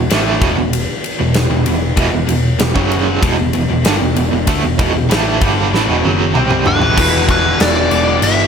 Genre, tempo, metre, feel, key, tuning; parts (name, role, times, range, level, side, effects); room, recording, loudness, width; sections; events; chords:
hard rock; 96 BPM; 4/4; straight; E minor; A4 = 439 Hz
overdriven electric guitar; riff; 0.0-7.0 s; E2 to C4; -17 LUFS; right 9 dB; tremolo
tight distorted guitar; riff; 0.0-8.5 s; E2 to C4; -19 LUFS; left 10 dB; distortion
hollow-body short-scale picked electric bass; bass; 0.0-8.5 s; E1 to D2; -19 LUFS; equal
huge arena drum kit; drums; 0.1-8.4 s; crash cymbal, kick drum, ride cymbal, snare drum, toms; -17 LUFS; equal
nasal lead guitar with a parked wah; melody; 6.7-8.5 s; B4 to E5; -16 LUFS; equal; overdrive
overdriven electric guitar; riff; 7.0-8.5 s; E2 to E3; -17 LUFS; equal
light reverb, studio reverb; -12 LUFS; side -7 dB against mid
0.0-7.0 A section; 7.0-8.5 B section
drum fill 5.7-7.0
0.0 Em